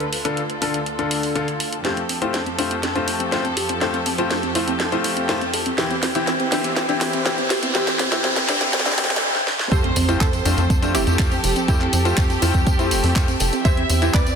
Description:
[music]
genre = progressive house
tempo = 122 BPM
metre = 4/4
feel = straight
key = unclear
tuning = A4 = 441 Hz
[part]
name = wide unison pluck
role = melody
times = 0.0-1.7, 9.7-14.4 s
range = E4 to E5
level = -29 LUFS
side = right 3 dB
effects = sidechain pumping, ping-pong delay
[part]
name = dark studio string section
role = sustained chords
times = 0.0-14.4 s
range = D2 to C5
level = -28 LUFS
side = equal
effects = sidechain pumping
[part]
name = bright grand piano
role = stabs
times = 0.0-14.2 s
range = D3 to C5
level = -24 LUFS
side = left 4 dB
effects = sidechain pumping, low-pass filter, ping-pong delay
[part]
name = house drum kit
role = drums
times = 0.0-14.4 s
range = handclaps, hi-hat, snare drum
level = -24 LUFS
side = right 1 dB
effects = sidechain pumping on hats
[part]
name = soft round pluck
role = arpeggios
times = 1.8-14.3 s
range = C4 to A4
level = -26 LUFS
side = right 2 dB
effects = ensemble chorus, sidechain pumping, ping-pong delay
[part]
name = riser, noise sweep and impact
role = sound effects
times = 5.5-11.7 s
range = none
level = -29 LUFS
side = right 1 dB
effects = none
[part]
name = rich studio violin section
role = second line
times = 9.7-14.4 s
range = G4 to E5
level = -28 LUFS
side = equal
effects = sidechain pumping, ping-pong delay
[part]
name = tight sequencer bass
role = bass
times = 9.7-14.3 s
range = F1 to F2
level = -22 LUFS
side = right 1 dB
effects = tube saturation, sidechain pumping
[part]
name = electronic kick drum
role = drums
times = 9.7-14.2 s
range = none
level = -19 LUFS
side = right 1 dB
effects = none
[part]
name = tambourine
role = percussion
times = 9.7-14.4 s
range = none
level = -30 LUFS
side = equal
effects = none
[sound]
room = moderate lush hall reverb, RT60 2.6 s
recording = dense, heavily limited modern master, high-pass filter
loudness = -18 LUFS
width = side -6 dB against mid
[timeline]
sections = 0.0-1.8 A section; 1.8-9.7 B section; 9.7-14.4 C section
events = build-up 1.8-9.7; drum fill 1.8-9.2, 9.3-9.7; filter sweep on synth pluck 1.8-9.7; riser 5.5-9.2; noise sweep 7.7-9.7; drop 9.7-14.4; impact 9.7-11.7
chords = 0.0 Dm; 1.8 Fadd9; 5.8 C/E; 9.7 Fadd9; 13.7 C/E

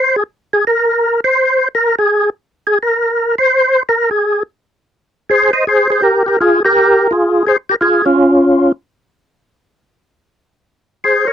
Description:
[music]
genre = jazz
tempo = 167 BPM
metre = 4/4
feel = swing 64% on 8ths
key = F minor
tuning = A4 = 440 Hz
[part]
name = percussive tonewheel organ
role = solo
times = 0.0-8.7, 11.0-11.3 s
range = Db4 to Eb5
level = -10 LUFS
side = equal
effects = slow rotary speaker, overdrive, chorus vibrato
[sound]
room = light reverb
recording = dry, close 1970s-style studio recording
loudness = -11 LUFS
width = side -9 dB against mid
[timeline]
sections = 0.0-4.9 A section; 4.9-11.3 B section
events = tonewheel organ solo 0.0-4.9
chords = 0.0 N.C.; 4.9 Fmadd9; 10.7 Bb5

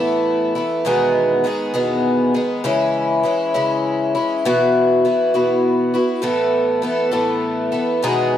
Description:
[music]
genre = rock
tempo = 67 BPM (dotted quarters)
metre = 6/8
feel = straight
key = unclear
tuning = A4 = 440 Hz
[part]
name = picked twelve-string acoustic guitar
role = solo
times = 0.0-8.4 s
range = E2 to A4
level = -16 LUFS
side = left 1 dB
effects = slapback echo
[sound]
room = light reverb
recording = dry, close 1970s-style studio recording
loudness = -16 LUFS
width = side -10 dB against mid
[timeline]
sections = 0.0-8.4 A section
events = none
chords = 0.0 Asus2; 0.8 Emaj7; 2.6 C#m; 4.4 Bsus4; 6.2 Asus2

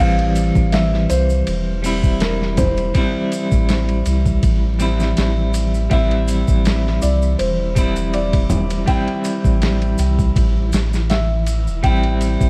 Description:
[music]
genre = trip hop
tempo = 81 BPM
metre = 4/4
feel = swing 54% on 16ths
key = A minor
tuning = A4 = 440 Hz
[part]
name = felt-muted upright piano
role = melody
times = 0.0-12.5 s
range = Bb4 to G5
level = -28 LUFS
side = equal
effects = tape echo
[part]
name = semi-hollow electric guitar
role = accompaniment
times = 0.0-12.5 s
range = E3 to E4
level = -24 LUFS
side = equal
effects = tremolo, tape echo
[part]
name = soft dub sub bass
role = bass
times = 0.0-12.5 s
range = E1 to C2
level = -22 LUFS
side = equal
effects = none
[part]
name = flickering grainy texture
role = texture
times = 1.5-12.5 s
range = E3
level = -33 LUFS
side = equal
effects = none
[part]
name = boom bap sampler-style drum kit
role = drums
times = 0.2-12.5 s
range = hi-hat, kick drum, ride cymbal, snare drum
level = -22 LUFS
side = equal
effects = none
[part]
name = maracas and congas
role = percussion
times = 0.4-12.5 s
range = none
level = -30 LUFS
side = equal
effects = none
[sound]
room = digital ambience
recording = dark, warm production, vinyl crackle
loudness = -18 LUFS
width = mono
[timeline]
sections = 0.0-12.5 A section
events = none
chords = 0.0 Am7

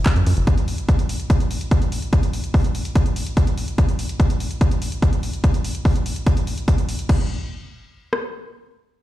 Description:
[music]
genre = psychedelic trance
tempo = 145 BPM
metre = 4/4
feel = straight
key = unclear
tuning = A4 = 440 Hz
[part]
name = airy breathy pad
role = texture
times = 0.0-0.5 s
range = C#4 to B5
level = -51 LUFS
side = equal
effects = none
[part]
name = techno drum kit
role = drums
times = 0.1-8.2 s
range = kick drum, rim click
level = -17 LUFS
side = equal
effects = overdrive, small room ambience
[part]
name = techno drum kit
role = drums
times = 0.1-7.2 s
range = crash cymbal, handclaps, hi-hat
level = -33 LUFS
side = left 1 dB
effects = overdrive, small room ambience
[sound]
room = little or no reverb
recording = played on a big sound system in a bare room, large studio reverb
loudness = -18 LUFS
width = side -14 dB against mid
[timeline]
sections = 0.0-7.1 A section; 7.1-9.0 B section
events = none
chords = 0.0 F#5; 7.1 N.C.

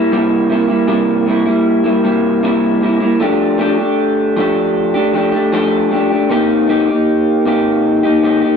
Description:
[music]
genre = indie pop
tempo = 78 BPM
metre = 4/4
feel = straight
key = F major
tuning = A4 = 440 Hz
[part]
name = electric guitar through a small old amp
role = solo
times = 0.0-8.6 s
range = C3 to G4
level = -12 LUFS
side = equal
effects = wide subtle chorus, warbly pitch drift
[sound]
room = moderate spring reverb, RT60 1.9 s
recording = dark, warm production, nothing above 7.6 kHz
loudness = -12 LUFS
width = side -6 dB against mid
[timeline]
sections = 0.1-3.2 A section; 3.2-8.6 B section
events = none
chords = 0.1 C7; 3.2 F69; 6.3 Cm7

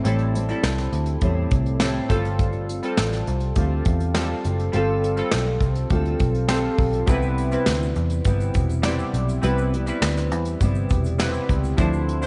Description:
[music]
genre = indie pop, bedroom pop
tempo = 102 BPM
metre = 4/4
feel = straight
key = C major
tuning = A4 = 440 Hz
[part]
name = chorused retro synth keys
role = accompaniment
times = 0.0-12.3 s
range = F3 to D5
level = -30 LUFS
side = equal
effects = none
[part]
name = fingerpicked steel-string acoustic guitar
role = accompaniment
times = 0.0-12.3 s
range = A2 to A4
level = -30 LUFS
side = equal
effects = analog chorus, vibrato effect
[part]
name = vintage muted picked electric bass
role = bass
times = 0.0-12.3 s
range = E1 to E2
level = -26 LUFS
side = equal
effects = none
[part]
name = soft brush drum kit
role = drums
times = 0.0-12.3 s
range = hi-hat, kick drum, snare drum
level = -27 LUFS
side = equal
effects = none
[part]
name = egg shaker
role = percussion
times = 7.1-12.3 s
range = none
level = -51 LUFS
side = equal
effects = none
[sound]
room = light reverb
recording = nothing above 10.5 kHz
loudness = -22 LUFS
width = mono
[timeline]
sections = 0.0-12.3 A section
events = none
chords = 0.0 Am7; 2.1 G9sus4; 7.1 Cmaj7

